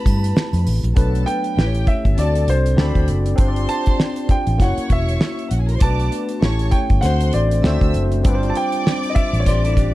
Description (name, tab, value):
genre	lush 1970s-style soul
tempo	99 BPM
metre	4/4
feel	swing 58% on 16ths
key	unclear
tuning	A4 = 441 Hz
part	clear grand piano	melody	0.0-9.9 s	C5 to A5	-25 LUFS	right 1 dB	none
part	warm studio violin section	second line	0.0-9.9 s	F#4 to E6	-30 LUFS	equal	none
part	barky tine electric piano	accompaniment	0.0-9.9 s	F#3 to D5	-24 LUFS	left 2 dB	analog chorus
part	vintage muted fingered electric bass	bass	0.1-9.9 s	E1 to G2	-18 LUFS	equal	none
part	damped 70s drum kit	drums	0.1-9.9 s	hi-hat, kick drum, snare drum	-18 LUFS	equal	none
part	triangle	percussion	0.1-1.0 s	none	-39 LUFS	right 9 dB	none
part	electric guitar through a small old amp	riff	9.5-9.9 s	D4 to C5	-27 LUFS	right 2 dB	none
room	little or no reverb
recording	dark, warm production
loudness	-16 LUFS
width	side -16 dB against mid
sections	1.0-9.9 A section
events	none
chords	0.0 Am9; 1.0 Bm7; 1.6 A7; 2.2 D7; 3.4 G7sus4; 4.6 F#7; 5.8 Bm7; 6.4 A7; 7.0 D7; 8.2 G7sus4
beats	0.36 | 0.96 1.57 2.18 2.79 | 3.39 4.00 4.61 5.21 | 5.82 6.43 7.03 7.64 | 8.25 8.86 9.46